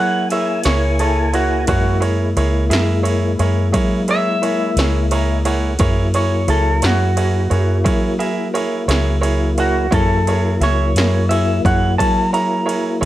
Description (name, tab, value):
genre	slow blues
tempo	58 BPM (dotted quarters)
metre	12/8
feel	straight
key	F# mixolydian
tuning	A4 = 442 Hz
part	electric guitar through a small old amp	second line	0.0-13.1 s	F#4 to A#5	-20 LUFS	equal	none
part	bright grand piano	accompaniment	0.0-13.1 s	E4 to A#5	-22 LUFS	right 4 dB	none
part	tonewheel organ	sustained chords	0.0-13.1 s	F#3 to G#5	-22 LUFS	left 2 dB	overdrive, chorus vibrato, slow rotary speaker
part	vintage muted fingered electric bass	bass	0.0-13.1 s	C#2 to F#3	-18 LUFS	equal	none
part	80s electronic pad drums	drums	0.3-13.1 s	kick drum, ride cymbal, snare drum	-23 LUFS	equal	none
room	little or no reverb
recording	none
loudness	-14 LUFS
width	side -14 dB against mid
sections	0.0-13.1 A section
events	clean electric guitar solo 0.0-13.1; grand piano fill 4.8-5.8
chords	0.0 F#9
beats	0.66 | 1.69 2.72 3.75 4.78 | 5.80 6.83 7.86 8.89 | 9.92 10.95 11.98 13.01